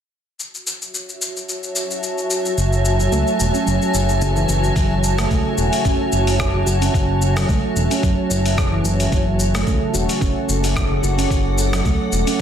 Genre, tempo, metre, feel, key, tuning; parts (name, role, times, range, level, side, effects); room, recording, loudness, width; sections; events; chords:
organic downtempo; 110 BPM; 4/4; swing 54% on 16ths; F# minor; A4 = 440 Hz
granular cloud pad; sustained chords; 1.0-12.4 s; F#4 to D6; -23 LUFS; equal; built-in reverb, sidechain pumping
dusty soul sampler-style drum kit; drums; 0.4-12.4 s; cabasa, hi-hat, rim click; -25 LUFS; left 2 dB; soft clipping on snare
smooth synth bass; bass; 2.6-12.2 s; E1 to C#2; -20 LUFS; equal; sidechain pumping
handpan; arpeggios; 3.0-12.4 s; C#3 to F#4; -22 LUFS; right 3 dB; ping-pong delay
electronic kick drum; drums; 4.8-12.0 s; -21 LUFS; equal
moderate digital room reverb, RT60 1.1 s; dense, heavily limited modern master; -16 LUFS; side -9 dB against mid
0.4-4.8 A section; 4.8-12.4 B section
0.4 F#m7; 9.1 D